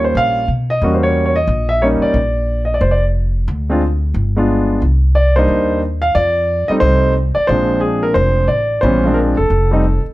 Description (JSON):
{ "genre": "jazz piano trio", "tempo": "180 BPM", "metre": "4/4", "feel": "swing 64% on 8ths", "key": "Bb mixolydian", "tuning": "A4 = 440 Hz", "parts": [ { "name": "warm grand piano", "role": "melody", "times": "0.0-10.0 s", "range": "E3 to F5", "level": "-15 LUFS", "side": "equal", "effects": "plate reverb" }, { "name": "upright bass", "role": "bass", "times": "0.0-10.1 s", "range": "E1 to Cb3", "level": "-16 LUFS", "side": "equal", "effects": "none" } ], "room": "light reverb", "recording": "dark, warm production", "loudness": "-13 LUFS", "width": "side -18 dB against mid", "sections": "0.0-10.1 A section", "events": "none", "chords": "0.0 Eb9; 0.8 Edim7; 2.2 Bb; 3.5 N.C.; 4.2 G7b9; 4.8 Cm7; 6.2 F9; 7.5 Bb9; 9.5 F", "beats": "0.15 0.48 | 0.82 1.15 1.49 1.82 | 2.15 2.48 2.82 3.15 | 3.48 3.82 4.15 4.49 | 4.82 5.15 5.49 5.82 | 6.16 6.49 6.82 7.16 | 7.49 7.83 8.16 8.49 | 8.83 9.16 9.50 9.83" }